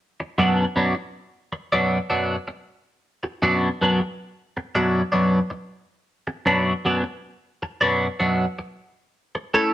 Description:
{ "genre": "rock", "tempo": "79 BPM", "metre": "4/4", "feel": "straight", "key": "B minor", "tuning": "A4 = 439 Hz", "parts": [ { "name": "twelve-string electric guitar", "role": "solo", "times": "0.2-9.7 s", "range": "F#2 to A4", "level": "-19 LUFS", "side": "equal", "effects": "phaser" } ], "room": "moderate stone room reverb, RT60 1.1 s", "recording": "band playing live in one room", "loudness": "-20 LUFS", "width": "side -13 dB against mid", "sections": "0.0-9.7 A section", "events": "none", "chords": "0.0 Bm; 9.1 A", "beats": "| 0.02 0.78 1.54 2.30 | 3.06 3.82 4.58 5.34 | 6.10 6.86 7.62 8.39 | 9.15" }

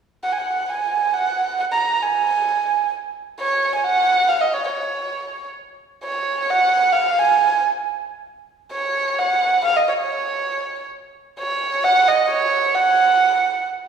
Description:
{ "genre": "mexican folk", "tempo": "free time", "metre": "none", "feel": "none", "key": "F# major", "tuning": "A4 = 440 Hz", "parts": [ { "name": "dark erhu", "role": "solo", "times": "0.2-13.7 s", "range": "C#5 to A#5", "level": "-17 LUFS", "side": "right 3 dB", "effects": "none" } ], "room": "wet scoring stage reverb, RT60 1.6 s", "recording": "recorded in a church or concert hall, small room ambience", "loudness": "-17 LUFS", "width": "side -7 dB against mid", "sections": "0.7-3.4 A section; 3.4-13.9 B section", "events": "none", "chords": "none", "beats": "free time" }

